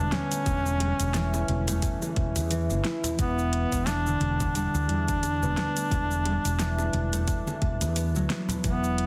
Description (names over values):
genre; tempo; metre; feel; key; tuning
organic downtempo; 88 BPM; 4/4; swing 57% on 16ths; E dorian; A4 = 440 Hz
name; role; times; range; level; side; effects
warm duduk; melody; 0.0-9.1 s; B3 to D4; -33 LUFS; equal; tape echo
concert harp; arpeggios; 0.0-9.1 s; D3 to E4; -34 LUFS; equal; delay
woody fretless electric bass; bass; 0.0-9.1 s; E1 to E2; -31 LUFS; equal; tube saturation, sidechain pumping
deep house drum kit; drums; 0.1-9.1 s; cabasa, hi-hat, snare drum; -36 LUFS; equal; studio reverb
congas and bongos; percussion; 0.1-8.6 s; none; -40 LUFS; equal; none
electronic kick drum; drums; 0.5-8.8 s; none; -32 LUFS; equal; studio reverb
room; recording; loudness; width
light reverb, studio ambience; dense, heavily limited modern master; -27 LUFS; mono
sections
0.0-9.1 A section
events
none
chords
0.0 Em7